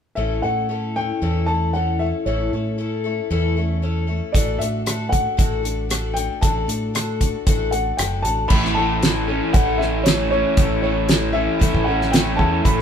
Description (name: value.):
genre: folk rock and heartland rock.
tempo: 115 BPM.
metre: 4/4.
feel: straight.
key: A major.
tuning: A4 = 440 Hz.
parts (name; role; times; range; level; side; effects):
dark grand piano; melody; 0.2-12.8 s; C#5 to B5; -24 LUFS; left 1 dB; none.
picked twelve-string acoustic guitar; accompaniment; 0.2-12.8 s; A2 to A4; -26 LUFS; left 6 dB; none.
deep dub fingered electric bass; bass; 0.2-12.8 s; F#1 to A2; -24 LUFS; right 1 dB; none.
damped 70s drum kit; drums; 4.3-12.8 s; crash cymbal, hi-hat, kick drum, rim click, snare drum; -19 LUFS; equal; none.
raw garage guitar; riff; 8.5-12.8 s; A2 to E4; -23 LUFS; right 3 dB; overdrive.
room: moderate large studio reverb, RT60 0.9 s.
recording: band playing live in one room.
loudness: -18 LUFS.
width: side -8 dB against mid.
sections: 0.2-8.5 A section; 8.5-12.8 B section.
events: none.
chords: 0.2 A; 4.3 Dadd9/A; 8.5 A.